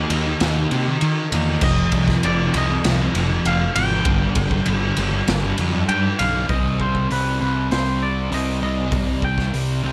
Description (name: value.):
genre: rock, shoegaze and dream pop.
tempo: 99 BPM.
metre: 4/4.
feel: straight.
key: C harmonic minor from 6.5 s.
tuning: A4 = 440 Hz.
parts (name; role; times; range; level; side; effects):
twangy electric guitar; melody; 0.0-9.9 s; B4 to G5; -28 LUFS; equal; digital delay.
fuzz guitar; riff; 0.0-9.9 s; F2 to Eb4; -24 LUFS; equal; distortion, lush chorus.
fuzz picked electric bass; bass; 0.0-9.9 s; F1 to Eb3; -25 LUFS; equal; overdrive.
raw garage drum kit; drums; 0.1-9.7 s; crash cymbal, hi-hat, kick drum, ride cymbal, snare drum; -27 LUFS; equal; none.
room: little or no reverb.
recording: none.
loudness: -20 LUFS.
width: mono.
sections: 0.0-6.5 A section; 6.5-9.9 B section.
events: none.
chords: 0.0 Eb5; 1.6 F7(no3); 4.1 G5; 6.5 Cm.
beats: 0.42 1.02 | 1.63 2.24 2.85 3.46 | 4.07 4.67 5.28 5.89 | 6.50 7.11 7.71 8.32 | 8.93 9.54.